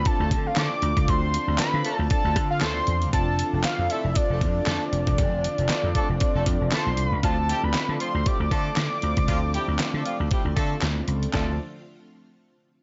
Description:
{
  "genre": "early-eighties boogie funk",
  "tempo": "117 BPM",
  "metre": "4/4",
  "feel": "swing 56% on 16ths",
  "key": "D minor",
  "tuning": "A4 = 440 Hz",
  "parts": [
    { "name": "fat analog lead", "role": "melody", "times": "0.0-10.8 s", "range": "D5 to D6", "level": "-30 LUFS", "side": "equal", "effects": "slapback echo" },
    { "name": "chorused polysynth", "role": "accompaniment", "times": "0.0-11.6 s", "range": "C4 to D5", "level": "-35 LUFS", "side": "equal", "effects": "tremolo" },
    { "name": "string machine, full ensemble", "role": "sustained chords", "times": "0.0-11.6 s", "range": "D3 to F4", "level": "-40 LUFS", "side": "equal", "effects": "none" },
    { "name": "vintage slap bass", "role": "bass", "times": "0.0-11.6 s", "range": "E1 to D3", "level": "-28 LUFS", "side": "equal", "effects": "none" },
    { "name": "detuned 8-bit digital drum machine", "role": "drums", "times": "0.1-11.5 s", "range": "handclaps, hi-hat, kick drum, snare drum", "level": "-28 LUFS", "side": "equal", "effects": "overdrive" },
    { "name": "warm horn section", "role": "second line", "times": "0.2-11.5 s", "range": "F3 to A4", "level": "-35 LUFS", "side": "equal", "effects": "none" }
  ],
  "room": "light reverb",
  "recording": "nothing above 7.7 kHz",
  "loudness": "-24 LUFS",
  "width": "mono",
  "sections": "0.0-7.2 A section; 7.2-11.3 B section; 11.3-12.8 C section",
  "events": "none",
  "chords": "0.0 Dm7; 3.1 F6; 7.2 Dm7"
}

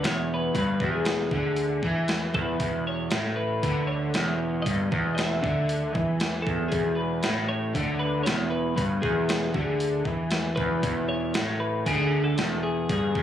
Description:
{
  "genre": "indie rock",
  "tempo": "117 BPM",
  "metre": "4/4",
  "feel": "straight",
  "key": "E major",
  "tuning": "A4 = 440 Hz",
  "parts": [
    { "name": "twelve-string electric guitar", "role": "melody", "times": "0.0-13.2 s", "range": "G#4 to E5", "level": "-30 LUFS", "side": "left 3 dB", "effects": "spring reverb" },
    { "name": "crunchy overdriven guitar", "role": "riff", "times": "0.0-13.2 s", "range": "E2 to E3", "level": "-27 LUFS", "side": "equal", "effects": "none" },
    { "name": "growling picked electric bass", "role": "bass", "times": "0.0-13.2 s", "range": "E1 to E2", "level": "-32 LUFS", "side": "right 1 dB", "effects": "overdrive" },
    { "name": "gated 80s digital drum machine", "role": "drums", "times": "0.0-13.2 s", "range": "hi-hat, kick drum, snare drum", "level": "-28 LUFS", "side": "equal", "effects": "gated reverb, gated reverb snare" }
  ],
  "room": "light reverb",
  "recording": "recorded on a phone in the room, club reverb, compression",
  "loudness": "-24 LUFS",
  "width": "side -10 dB against mid",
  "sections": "0.0-13.2 A section",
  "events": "none",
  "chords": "0.0 E"
}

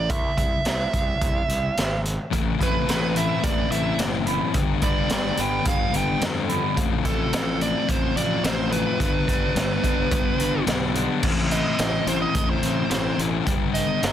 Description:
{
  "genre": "quiet-loud alternative rock",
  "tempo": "108 BPM",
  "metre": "4/4",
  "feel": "straight",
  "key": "unclear",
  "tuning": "A4 = 445 Hz",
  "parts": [
    { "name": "dark smooth lead guitar", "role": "melody", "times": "0.0-14.1 s", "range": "A4 to G5", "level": "-27 LUFS", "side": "right 4 dB", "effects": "overdrive, tape echo" },
    { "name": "fuzz fingered electric bass", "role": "bass", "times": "0.0-14.1 s", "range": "F#1 to F2", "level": "-29 LUFS", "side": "right 1 dB", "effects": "overdrive" },
    { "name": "raw garage drum kit", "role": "drums", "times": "0.1-14.1 s", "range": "crash cymbal, hi-hat, kick drum, snare drum", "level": "-25 LUFS", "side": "right 1 dB", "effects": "none" },
    { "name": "electric guitar through a small old amp", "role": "arpeggios", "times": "2.3-14.1 s", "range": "G2 to B4", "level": "-32 LUFS", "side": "right 6 dB", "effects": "wide subtle chorus" },
    { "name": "thick fuzz guitar", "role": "riff", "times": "2.3-14.1 s", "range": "G2 to F4", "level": "-25 LUFS", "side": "left 9 dB", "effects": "distortion" }
  ],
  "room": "light reverb",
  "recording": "dense, heavily limited modern master",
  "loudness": "-20 LUFS",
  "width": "side -10 dB against mid",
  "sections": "0.0-11.2 A section; 11.2-14.1 B section",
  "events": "lead electric guitar solo 11.2-14.1",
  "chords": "0.1 C; 2.3 Amadd9; 4.5 Gadd9; 6.8 Fmaj7/A; 9.0 G; 11.2 Am; 13.5 Gadd9"
}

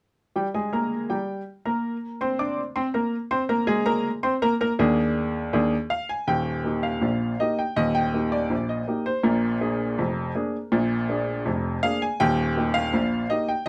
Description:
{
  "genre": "ragtime piano",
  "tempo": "81 BPM",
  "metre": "2/4",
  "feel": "straight",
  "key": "Eb major",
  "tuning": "A4 = 439 Hz",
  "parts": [
    { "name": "clear upright piano", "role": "solo", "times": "0.4-13.7 s", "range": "Eb1 to D6", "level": "-25 LUFS", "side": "equal", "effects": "none" }
  ],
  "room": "little or no reverb",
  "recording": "close, detailed microphones",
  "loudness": "-25 LUFS",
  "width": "mono",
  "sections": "0.4-6.3 A section; 6.3-13.7 B section",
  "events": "none",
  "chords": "0.4 Gmadd11; 3.3 Bb7; 6.3 Eb; 9.3 Bb7; 12.2 Eb"
}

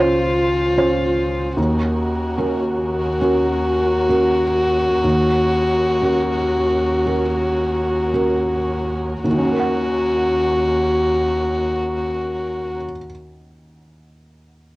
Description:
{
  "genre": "neoclassical piano and strings",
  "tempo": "53-76 BPM",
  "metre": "4/4",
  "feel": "rubato",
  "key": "Eb dorian",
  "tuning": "A4 = 440 Hz",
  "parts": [
    { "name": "dark violin", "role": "melody", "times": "0.0-12.8 s", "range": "F4 to Gb4", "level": "-19 LUFS", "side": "left 1 dB", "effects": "cassette tape" },
    { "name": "felt-muted upright piano", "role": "accompaniment", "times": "0.0-14.8 s", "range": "Db2 to Gb5", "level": "-22 LUFS", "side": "right 1 dB", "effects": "cassette tape" },
    { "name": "dark chamber string section", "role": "sustained chords", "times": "0.0-12.8 s", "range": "Db4 to C5", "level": "-30 LUFS", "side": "right 1 dB", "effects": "cassette tape" },
    { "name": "rich double bass", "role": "bass", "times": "0.0-12.8 s", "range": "Db2 to Eb2", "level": "-25 LUFS", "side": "equal", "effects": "none" }
  ],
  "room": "light reverb",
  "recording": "home recording on cassette",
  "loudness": "-16 LUFS",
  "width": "side -19 dB against mid",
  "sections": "0.0-9.2 A section; 9.2-13.6 B section",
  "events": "slowing down 0.0-9.2",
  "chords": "0.0 Dbmaj7; 1.6 Ebm7"
}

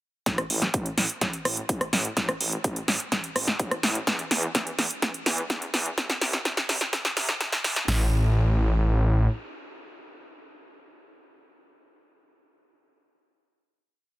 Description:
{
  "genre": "EDM, festival progressive house",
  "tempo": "126 BPM",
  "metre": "4/4",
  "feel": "straight",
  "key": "A minor",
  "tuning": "A4 = 439 Hz",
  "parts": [
    { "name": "detuned saw bass", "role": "bass", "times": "0.3-9.3 s", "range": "A1 to E2", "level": "-27 LUFS", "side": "equal", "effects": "tube saturation, sidechain pumping, high-pass filter" },
    { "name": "big-room dance drum kit", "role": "drums", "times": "0.3-8.0 s", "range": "hi-hat, kick drum, snare drum", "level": "-30 LUFS", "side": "equal", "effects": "high-pass filter on kick, high-pass filter on snare, high-pass filter on hats" },
    { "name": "big-room dance drum kit", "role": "drums", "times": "0.3-7.9 s", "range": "hi-hat, rim click, snare drum", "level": "-26 LUFS", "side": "equal", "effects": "none" }
  ],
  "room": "little or no reverb",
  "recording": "dense, heavily limited modern master, high-pass filter",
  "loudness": "-23 LUFS",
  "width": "side -17 dB against mid",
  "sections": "0.3-7.9 build; 7.9-11.7 final note",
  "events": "build-up 0.3-7.9; drum fill 0.3-7.9",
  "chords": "none"
}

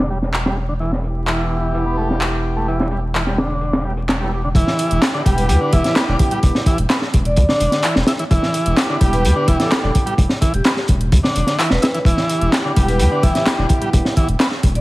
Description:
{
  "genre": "breakbeat, breaks",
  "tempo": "128 BPM",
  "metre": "4/4",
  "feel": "straight",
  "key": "E minor pentatonic",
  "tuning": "A4 = 440 Hz",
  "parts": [
    { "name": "combo organ", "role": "riff", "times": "0.0-14.5 s", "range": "D3 to E4", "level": "-22 LUFS", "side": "equal", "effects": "overdrive, low-pass filter, dub echo" },
    { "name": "saturated sub bass", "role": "bass", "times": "0.0-14.8 s", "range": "E1 to E2", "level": "-19 LUFS", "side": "equal", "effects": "none" },
    { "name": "crunchy breakbeat drum kit", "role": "drums", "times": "0.0-14.8 s", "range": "hi-hat, kick drum, snare drum", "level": "-17 LUFS", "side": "equal", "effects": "low-pass filter on kick, low-pass filter on hats, low-pass filter on snare, low-pass filter on room" },
    { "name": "house drum kit", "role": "drums", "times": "0.3-14.8 s", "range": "handclaps, hi-hat", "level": "-24 LUFS", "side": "equal", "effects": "overdrive" },
    { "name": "mellow brass ensemble", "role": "stabs", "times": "1.0-14.2 s", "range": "B3 to A4", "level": "-24 LUFS", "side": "equal", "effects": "dub echo" },
    { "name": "vibraphone with medium hard mallets", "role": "melody", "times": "5.4-14.8 s", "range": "G4 to E5", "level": "-24 LUFS", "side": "equal", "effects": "telephone sound, dub echo" }
  ],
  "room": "studio reverb",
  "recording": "vinyl crackle",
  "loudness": "-14 LUFS",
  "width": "side -19 dB against mid",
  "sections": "0.0-4.6 A section; 4.6-14.8 B section",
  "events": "drop 4.6-14.8",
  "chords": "0.0 Em"
}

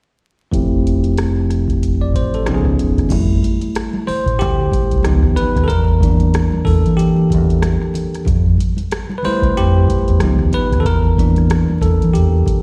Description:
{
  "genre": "R&B, neo-soul",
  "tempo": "93 BPM",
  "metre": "4/4",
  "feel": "swing 59% on 16ths",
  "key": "F major",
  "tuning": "A4 = 440 Hz",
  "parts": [
    { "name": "bell-like tine electric piano", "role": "accompaniment", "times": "0.5-12.6 s", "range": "E3 to D5", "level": "-21 LUFS", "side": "equal", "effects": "low-pass filter, slapback echo" },
    { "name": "deep dub fingered electric bass", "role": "bass", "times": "0.5-12.5 s", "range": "E1 to E3", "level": "-18 LUFS", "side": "equal", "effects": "none" },
    { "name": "booming analog drum machine", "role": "drums", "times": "0.5-12.6 s", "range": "crash cymbal, hi-hat, kick drum, rim click", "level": "-22 LUFS", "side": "equal", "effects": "none" },
    { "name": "congas", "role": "percussion", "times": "3.1-12.6 s", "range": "none", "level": "-30 LUFS", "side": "equal", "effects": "none" }
  ],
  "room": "light reverb",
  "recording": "live gig heard through the venue's PA, recital hall reverb, vinyl crackle",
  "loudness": "-16 LUFS",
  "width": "mono",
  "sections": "0.5-3.1 A section; 3.1-12.6 B section",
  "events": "filter sweep on tine electric piano 0.5-3.1; tine electric piano solo 3.1-12.6",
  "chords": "0.5 Fmaj9; 2.5 Db9; 3.1 Fmaj9; 5.0 Db9; 5.7 Em7b5; 8.3 Fmaj9; 10.2 Db9; 10.8 Gm69"
}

